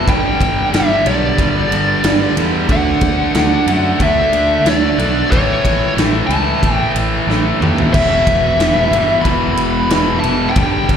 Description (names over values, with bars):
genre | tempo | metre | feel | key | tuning
hard rock | 92 BPM | 4/4 | straight | E minor | A4 = 441 Hz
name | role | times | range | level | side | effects
biting lead guitar | melody | 0.0-11.0 s | C#5 to B5 | -18 LUFS | left 2 dB | overdrive, slapback echo, analog delay
distorted electric guitar | riff | 0.0-11.0 s | E2 to D4 | -25 LUFS | equal | none
overdriven electric guitar | riff | 0.0-11.0 s | E2 to D4 | -20 LUFS | right 11 dB | slapback echo
tight distorted guitar | riff | 0.0-11.0 s | E2 to D4 | -21 LUFS | left 14 dB | distortion, slapback echo
fuzz fingered electric bass | bass | 0.1-11.0 s | E1 to F#2 | -19 LUFS | equal | overdrive
huge arena drum kit | drums | 0.1-11.0 s | crash cymbal, kick drum, ride cymbal, snare drum, toms | -18 LUFS | equal | none
room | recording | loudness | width
little or no reverb | live gig heard through the venue's PA, recital hall reverb | -12 LUFS | side -8 dB against mid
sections
0.0-11.0 A section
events
drum fill 7.3-7.9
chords
0.1 G5; 2.7 D; 5.3 A; 7.9 E5